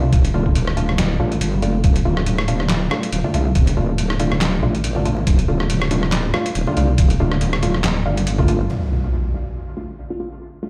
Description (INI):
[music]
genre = deep dubstep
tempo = 140 BPM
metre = 4/4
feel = swing 56% on 16ths, half-time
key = D minor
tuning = A4 = 440 Hz
[part]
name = wobble bass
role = bass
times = 0.0-8.7 s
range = D1 to C2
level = -22 LUFS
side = equal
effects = chorus
[part]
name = electronic kick drum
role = drums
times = 0.1-8.5 s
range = none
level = -18 LUFS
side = equal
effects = overdrive
[part]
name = trip hop sampler-style drum kit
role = drums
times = 0.1-8.6 s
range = handclaps, hi-hat, rim click, snare drum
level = -26 LUFS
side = equal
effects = overdrive, low-pass filter on snare, low-pass filter on hats, low-pass filter on room
[part]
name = bongos and congas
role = percussion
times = 0.2-8.7 s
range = none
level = -29 LUFS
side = equal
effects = none
[part]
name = filtered dub chord stab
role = stabs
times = 0.3-10.7 s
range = A3 to F4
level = -28 LUFS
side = equal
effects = chorus, dub echo
[part]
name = impact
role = sound effects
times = 8.7-10.4 s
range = none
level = -26 LUFS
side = equal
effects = none
[sound]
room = light reverb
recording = played on a big sound system in a bare room, stone room reverb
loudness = -19 LUFS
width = mono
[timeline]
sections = 0.0-8.7 A section; 8.7-10.7 B section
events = impact 8.7-10.4; filter sweep on synth stab 8.7-10.7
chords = 0.0 Dm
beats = | 0.13 0.56 0.98 1.41 | 1.84 2.27 2.70 3.13 | 3.56 3.98 4.41 4.84 | 5.27 5.70 6.13 6.55 | 6.98 7.41 7.84 8.27 | 8.70 9.13 9.55 9.98 | 10.41